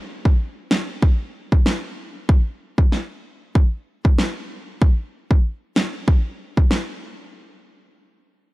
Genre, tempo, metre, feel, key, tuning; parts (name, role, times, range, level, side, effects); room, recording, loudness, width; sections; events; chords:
dancehall; 95 BPM; 4/4; swing 56% on 16ths
pop drum kit; drums; 0.3-6.9 s; kick drum, snare drum; -17 LUFS; equal; overdrive
little or no reverb; dark, warm production; -18 LUFS; side -20 dB against mid
0.0-8.5 A section
break 7.3-8.5